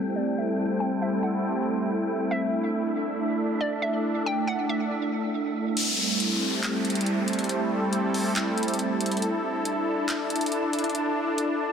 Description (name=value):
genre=hip hop, atmospheric cloud-rap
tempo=139 BPM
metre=4/4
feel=half-time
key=A minor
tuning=A4 = 443 Hz
part: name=sweeping resonant pad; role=sustained chords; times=0.0-11.7 s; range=G3 to A4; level=-25 LUFS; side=equal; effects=chorus, low-pass filter
part: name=wind-like tuned noise texture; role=texture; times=0.0-11.7 s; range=C4 to A5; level=-35 LUFS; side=right 1 dB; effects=built-in reverb
part: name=hollow square pluck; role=melody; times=0.2-4.9 s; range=D5 to G5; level=-32 LUFS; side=equal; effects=chorus, low-pass filter, tape echo
part: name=trap drum kit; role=drums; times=5.8-11.5 s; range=crash cymbal, handclaps, hi-hat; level=-32 LUFS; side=left 1 dB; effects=none
part: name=downlifter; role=sound effects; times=5.8-9.2 s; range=none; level=-30 LUFS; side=left 2 dB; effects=none
room=light reverb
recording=dense, heavily limited modern master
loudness=-24 LUFS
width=side -7 dB against mid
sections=0.0-5.8 A section; 5.8-11.7 B section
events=filter sweep 0.0-5.8; kick muted 5.8-11.7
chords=0.0 Am7; 2.3 Dsus2; 5.8 Am7; 9.2 Dsus2